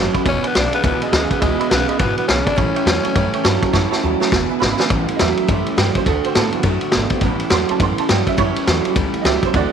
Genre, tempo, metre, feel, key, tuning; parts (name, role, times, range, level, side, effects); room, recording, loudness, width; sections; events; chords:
rockabilly; 207 BPM; 4/4; swing 62% on 8ths; A mixolydian; A4 = 440 Hz
honky-tonk upright piano; accompaniment; 0.0-9.7 s; C#3 to C6; -25 LUFS; right 11 dB
picked steel-string acoustic guitar; accompaniment; 0.0-9.7 s; E2 to F#4; -26 LUFS; left 14 dB
electric guitar through a small old amp; riff; 0.0-9.7 s; E2 to B3; -22 LUFS; right 13 dB; phaser
upright bass; bass; 0.0-9.7 s; E1 to A2; -23 LUFS; left 1 dB
vintage drum kit; drums; 0.1-9.6 s; kick drum, ride cymbal, snare drum; -19 LUFS; left 1 dB
growling tenor saxophone; melody; 0.3-3.7 s; G#3 to D4; -22 LUFS; left 4 dB
light reverb; 1960s-style stereo with parts hard left and right; -15 LUFS; side -7 dB against mid
0.0-4.9 A section; 4.9-9.7 B section
drum fill 3.7-4.9; honky-tonk piano solo 4.9-9.7
0.3 E7; 2.6 A7; 4.3 E7; 4.9 A7; 6.1 D7; 7.2 A7